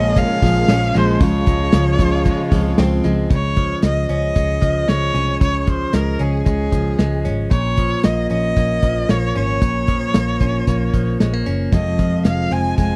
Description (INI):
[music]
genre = jangly indie pop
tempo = 114 BPM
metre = 4/4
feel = straight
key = Db major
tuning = A4 = 442 Hz
[part]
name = clear erhu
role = melody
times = 0.0-13.0 s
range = Ab4 to Ab5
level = -25 LUFS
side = equal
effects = slapback echo
[part]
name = picked steel-string acoustic guitar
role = accompaniment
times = 0.0-3.3, 11.7-13.0 s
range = F2 to Ab4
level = -23 LUFS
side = equal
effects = none
[part]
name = warm studio string section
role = sustained chords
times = 0.0-3.3 s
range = Db3 to Ab4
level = -30 LUFS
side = equal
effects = none
[part]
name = direct-recorded clean electric guitar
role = arpeggios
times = 0.0-13.0 s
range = F2 to Db4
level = -25 LUFS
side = equal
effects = spring reverb, slapback echo
[part]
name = vintage muted picked electric bass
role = bass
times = 0.0-13.0 s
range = F1 to Db2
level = -23 LUFS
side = equal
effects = none
[part]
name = modern studio drum kit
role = drums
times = 0.2-12.9 s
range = hi-hat, kick drum, snare drum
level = -20 LUFS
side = equal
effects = none
[sound]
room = little or no reverb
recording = dry, close 1970s-style studio recording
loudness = -18 LUFS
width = mono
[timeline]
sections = 0.0-3.3 A section; 3.3-13.0 B section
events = none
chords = 0.0 Bbm7; 1.2 Dbmaj7; 3.3 Db; 7.5 Bbm; 11.7 Fm